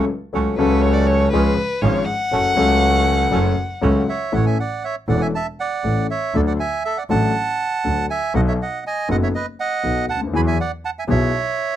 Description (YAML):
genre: tango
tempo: 120 BPM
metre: 4/4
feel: rubato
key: F# minor, A major from 4.3 s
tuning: A4 = 440 Hz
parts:
  - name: warm concert grand piano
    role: accompaniment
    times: 0.0-11.3 s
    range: E1 to A4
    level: -21 LUFS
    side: left 4 dB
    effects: none
  - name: bandoneon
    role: stabs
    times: 0.0-4.0 s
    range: G#3 to F#4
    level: -25 LUFS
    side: right 7 dB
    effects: none
  - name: clear double bass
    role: bass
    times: 0.0-11.3 s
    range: E1 to E2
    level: -21 LUFS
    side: right 2 dB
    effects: none
  - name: warm violin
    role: second line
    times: 0.6-4.1 s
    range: B4 to F#5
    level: -21 LUFS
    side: left 3 dB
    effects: none
  - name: bandoneon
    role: melody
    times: 4.1-11.8 s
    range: A4 to B5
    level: -22 LUFS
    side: right 4 dB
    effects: none
room: little or no reverb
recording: dry, close 1970s-style studio recording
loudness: -17 LUFS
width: side -11 dB against mid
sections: 0.0-4.3 A section; 4.3-11.8 B section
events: violin solo 0.0-4.3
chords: 0.3 F#m/C#; 1.3 C#; 2.3 F#m; 4.3 A; 6.4 D; 8.3 B7; 10.3 Eadd9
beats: | 0.34 0.83 1.33 1.83 | 2.32 2.82 3.32 3.83 | 4.33 4.84 5.34 5.85 | 6.35 6.85 7.35 7.85 | 8.35 8.84 9.34 9.84 | 10.33 10.83 11.34